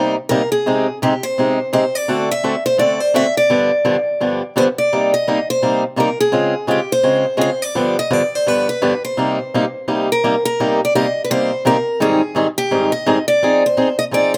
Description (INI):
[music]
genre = jazz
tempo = 169 BPM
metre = 4/4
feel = swing 60% on 8ths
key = C minor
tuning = A4 = 441 Hz
[part]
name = picked steel-string acoustic guitar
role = melody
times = 0.0-14.4 s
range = G4 to E5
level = -20 LUFS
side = equal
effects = none
[part]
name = picked swing-style acoustic guitar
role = accompaniment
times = 0.0-14.3 s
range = G2 to A4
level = -20 LUFS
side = equal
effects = none
[sound]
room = light reverb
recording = close, detailed microphones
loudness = -17 LUFS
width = mono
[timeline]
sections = 0.0-10.6 A section; 10.6-14.4 B section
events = none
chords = 0.0 Cm7; 0.6 Abmaj7/C; 2.1 D7; 3.5 G7; 4.9 Cm7; 6.3 Dbmaj7; 7.7 G7; 9.2 Cm7; 12.0 Abmaj7; 13.4 Fm7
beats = 0.29 | 0.65 1.00 1.36 1.71 | 2.07 2.42 2.78 3.13 | 3.49 3.85 4.20 4.55 | 4.91 5.26 5.62 5.97 | 6.33 6.68 7.04 7.39 | 7.75 8.10 8.46 8.81 | 9.16 9.52 9.87 10.23 | 10.58 10.94 11.29 11.64 | 12.00 12.35 12.70 13.06 | 13.41 13.76 14.12